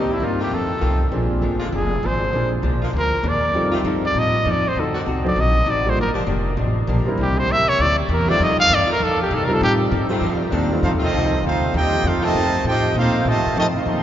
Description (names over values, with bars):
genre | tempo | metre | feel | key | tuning
jazz, big band swing | 198 BPM | 4/4 | swing 61% on 8ths | F mixolydian, F major from 10.8 s | A4 = 442 Hz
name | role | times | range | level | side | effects
breathy trumpet | melody | 0.0-9.7 s | Eb4 to F5 | -21 LUFS | equal | none
archtop guitar, miked and amplified | accompaniment | 0.0-14.0 s | F2 to A4 | -27 LUFS | left 2 dB | none
warm concert grand piano | accompaniment | 0.0-10.8 s | F#3 to Bb4 | -27 LUFS | equal | none
clear saxophone section | sustained chords | 0.0-6.2, 8.3-12.6 s | D3 to G4 | -31 LUFS | equal | none
upright bass | bass | 0.0-14.0 s | F1 to C3 | -22 LUFS | equal | none
clear trumpet section | melody | 10.8-14.0 s | C4 to C6 | -21 LUFS | right 1 dB | none
bright trombone section | second line | 10.8-14.0 s | C3 to G4 | -24 LUFS | right 2 dB | none
room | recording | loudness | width
wet cathedral reverb, RT60 7.3 s | recorded in a church or concert hall, nothing above 7.5 kHz | -17 LUFS | side -11 dB against mid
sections
0.0-10.8 A section; 10.8-14.0 B section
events
trumpet solo 0.0-10.8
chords
0.0 Cm7; 0.5 F7; 1.1 Bb7; 3.5 F7; 4.8 D7b9; 6.0 Gm7; 7.2 C7; 8.4 F7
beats
0.20 0.51 0.81 | 1.12 1.42 1.73 2.03 | 2.33 2.64 2.94 3.24 | 3.55 3.85 4.16 4.46 | 4.76 5.07 5.37 5.67 | 5.98 6.28 6.58 6.89 | 7.19 7.49 7.80 8.10 | 8.40 8.71 9.01 9.31 | 9.62 9.92 10.22 10.53 | 10.83 11.13 11.44 11.74 | 12.04 12.35 12.65 12.95 | 13.26 13.56 13.86